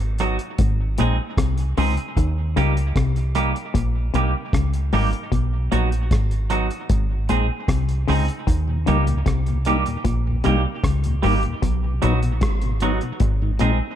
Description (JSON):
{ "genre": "roots reggae", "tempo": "76 BPM", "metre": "4/4", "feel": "straight", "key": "Eb mixolydian", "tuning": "A4 = 440 Hz", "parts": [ { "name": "semi-hollow electric guitar", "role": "riff", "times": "0.0-13.7 s", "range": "Ab2 to Eb3", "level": "-26 LUFS", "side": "left 8 dB", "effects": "none" }, { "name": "deep dub fingered electric bass", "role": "bass", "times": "0.0-13.8 s", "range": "Ab1 to Eb2", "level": "-21 LUFS", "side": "equal", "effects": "none" }, { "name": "cloth-damped thuddy drum kit", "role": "drums", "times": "0.0-13.8 s", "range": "hi-hat, kick drum, rim click", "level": "-24 LUFS", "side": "equal", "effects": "tape echo" }, { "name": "semi-hollow electric guitar", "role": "accompaniment", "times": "0.2-13.8 s", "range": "F#3 to Ab4", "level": "-25 LUFS", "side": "right 4 dB", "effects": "tape echo" }, { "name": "mellow tonewheel organ", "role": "accompaniment", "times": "8.7-13.7 s", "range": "Eb2 to Eb4", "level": "-27 LUFS", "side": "left 2 dB", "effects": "slow rotary speaker" } ], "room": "light reverb", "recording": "dark, warm production", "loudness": "-18 LUFS", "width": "side -10 dB against mid", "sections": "0.0-14.0 A section", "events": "none", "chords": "0.0 B; 0.6 Ab; 2.2 Eb; 5.3 B; 6.9 Ab; 8.5 Eb; 11.6 B; 13.2 Ab", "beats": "0.59 1.38 | 2.16 2.95 3.74 4.53 | 5.32 6.11 6.90 7.68 | 8.47 9.26 10.05 10.84 | 11.63 12.42 13.21" }